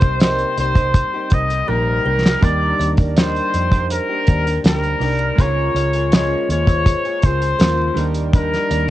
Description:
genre	indie pop, bedroom pop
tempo	81 BPM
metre	4/4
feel	straight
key	Eb major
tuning	A4 = 439 Hz
part	warm trumpet	melody	0.0-8.9 s	Bb4 to Eb5	-20 LUFS	left 1 dB	wide subtle chorus, cassette tape
part	chorused retro synth keys	accompaniment	0.0-8.9 s	G3 to Bb4	-29 LUFS	right 7 dB	cassette tape
part	nylon-string guitar	accompaniment	0.0-8.9 s	C3 to Ab4	-26 LUFS	left 7 dB	wide subtle chorus, warbly pitch drift, cassette tape
part	vintage muted fingered electric bass	bass	0.0-8.9 s	Bb1 to F2	-21 LUFS	equal	none
part	damped 70s drum kit	drums	0.0-8.9 s	hi-hat, kick drum, snare drum	-15 LUFS	equal	vintage 12-bit sampler grit, cassette tape
part	kalimba	second line	0.2-8.9 s	Bb4 to Eb5	-29 LUFS	right 7 dB	analog chorus, cassette tape, tape echo
room	light reverb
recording	home recording on cassette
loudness	-15 LUFS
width	side -14 dB against mid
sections	0.0-8.9 A section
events	drum fill 1.7-2.4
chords	0.0 Cm7; 2.4 Ebmaj7; 5.4 Db6; 8.0 Ebmaj7

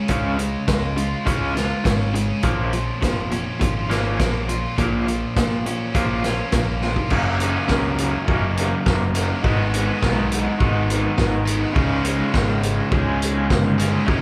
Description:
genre	indie rock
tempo	103 BPM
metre	4/4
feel	straight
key	unclear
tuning	A4 = 439 Hz
part	cranked stack guitar	riff	0.0-14.2 s	Gb2 to Ab4	-28 LUFS	equal	overdrive
part	crunchy overdriven guitar	riff	0.0-14.2 s	Gb2 to Ab4	-26 LUFS	equal	tremolo
part	overdriven picked electric bass	bass	0.1-14.2 s	F1 to Bb2	-27 LUFS	equal	none
part	vintage drum kit	drums	0.1-14.2 s	crash cymbal, hi-hat, kick drum, snare drum	-25 LUFS	equal	none
room	moderate large studio reverb, RT60 0.9 s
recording	band playing live in one room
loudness	-21 LUFS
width	mono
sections	0.0-7.1 A section; 7.1-14.2 B section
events	drum fill 6.8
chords	0.0 Db; 2.4 Bbm7; 7.1 Gb6; 9.4 Abm; 11.8 Dbsus2

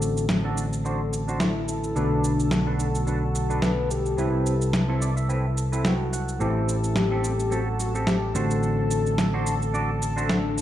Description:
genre	nu-disco, nu disco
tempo	108 BPM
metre	4/4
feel	swing 55% on 16ths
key	unclear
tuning	A4 = 440 Hz
part	soft octave-layered synth lead	melody	0.0-10.6 s	D4 to B4	-30 LUFS	left 3 dB	chorus, tape echo
part	tine electric piano	accompaniment	0.0-10.6 s	C3 to B4	-29 LUFS	left 1 dB	wide subtle chorus, slapback echo
part	lush unison pad	sustained chords	0.0-10.6 s	A4	-33 LUFS	left 1 dB	chorus
part	semi-hollow electric guitar	riff	0.0-10.6 s	C4 to G5	-32 LUFS	right 3 dB	analog chorus, low-pass filter, slapback echo
part	picked electric bass	bass	0.0-10.6 s	A1 to C2	-27 LUFS	equal	none
part	electronic shaker and snare drum	drums	0.0-10.6 s	none	-28 LUFS	equal	none
room	light reverb, digital ambience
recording	played on a big sound system in a bare room, large studio reverb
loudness	-22 LUFS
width	side -12 dB against mid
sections	0.0-10.6 A section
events	filter sweep on analog synth pad 0.0-10.6; clean electric guitar fill 4.7-6.4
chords	0.0 D7/A; 2.0 Bm7; 4.2 Cmaj7; 6.4 Am7; 8.3 D7/A

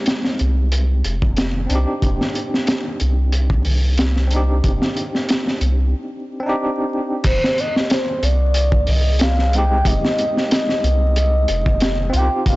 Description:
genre	trip hop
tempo	92 BPM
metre	4/4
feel	swing 54% on 16ths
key	F dorian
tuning	A4 = 440 Hz
part	bell-like tine electric piano	accompaniment	0.0-12.6 s	Ab3 to G4	-25 LUFS	equal	tremolo, vintage 12-bit sampler grit, tape echo
part	crunchy breakbeat drum kit	drums	0.1-12.6 s	crash cymbal, hi-hat, kick drum, snare drum	-20 LUFS	equal	none
part	round analog bass	bass	0.4-12.6 s	F1 to C2	-17 LUFS	equal	none
part	pure breathy sine lead	melody	7.3-12.6 s	C5 to G5	-21 LUFS	equal	chorus, tape echo
room	small room reverb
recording	blown-out, overdriven recording, vinyl crackle, overdrive, nothing above 7.8 kHz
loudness	-16 LUFS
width	side -20 dB against mid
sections	0.0-7.2 A section; 7.2-12.6 B section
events	break 5.9-7.2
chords	0.0 Fm9; 2.0 Cmadd9/F; 7.2 Fm9

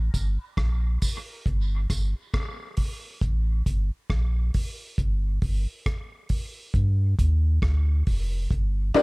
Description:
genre	dub reggae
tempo	68 BPM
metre	4/4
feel	swing 59% on 16ths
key	G minor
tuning	A4 = 440 Hz
part	soft dub sub bass	bass	0.0-9.0 s	F1 to G2	-23 LUFS	equal	none
part	cloth-damped thuddy drum kit	drums	0.1-9.0 s	hi-hat, kick drum, rim click	-27 LUFS	equal	none
part	tambourine	percussion	0.1-2.1, 9.0 s	none	-39 LUFS	right 3 dB	high-pass filter on perc, dub echo
part	semi-hollow electric guitar	accompaniment	8.9-9.0 s	D4 to Bb4	-42 LUFS	right 4 dB	dub echo
part	dark upright piano	stabs	8.9-9.0 s	D4 to D5	-15 LUFS	left 2 dB	none
room	small room ambience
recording	none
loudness	-23 LUFS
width	side -26 dB against mid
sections	0.0-9.0 A section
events	break 0.0-8.5; part muted 1.5-8.5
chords	0.0 Gm; 5.0 G5; 8.5 Gm

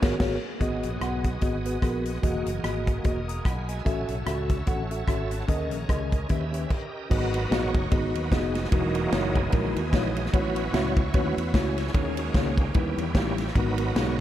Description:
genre	uptempo gospel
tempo	148 BPM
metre	4/4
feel	swing 58% on 8ths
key	G# minor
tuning	A4 = 440 Hz
part	mellow tine electric piano	accompaniment	0.0-14.2 s	G#2 to D#6	-30 LUFS	left 1 dB	medium stereo tremolo
part	bright tonewheel organ	sustained chords	0.0-14.2 s	D#3 to B5	-32 LUFS	right 3 dB	slow rotary speaker, chorus vibrato
part	fingered electric bass	bass	0.0-14.2 s	E1 to E2	-30 LUFS	equal	none
part	natural country drum kit	drums	0.0-14.1 s	crash cymbal, hi-hat, kick drum, ride cymbal, rim click, snare drum	-27 LUFS	equal	none
room	light reverb, small room ambience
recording	none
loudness	-24 LUFS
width	side -12 dB against mid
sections	0.6-7.1 A section; 7.1-14.2 B section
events	band accent 0.0-0.6; stop 6.7-7.1; tonewheel organ solo 7.1-14.2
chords	0.0 G#m11; 0.6 G#m7; 2.2 Emaj9#11; 3.9 A6; 5.5 D#7sus4; 6.3 D#7b9b13; 7.1 G#m7; 8.7 Emaj9#11; 10.3 A6; 11.9 D#7sus4; 12.8 D#7b9b13; 13.6 G#m9

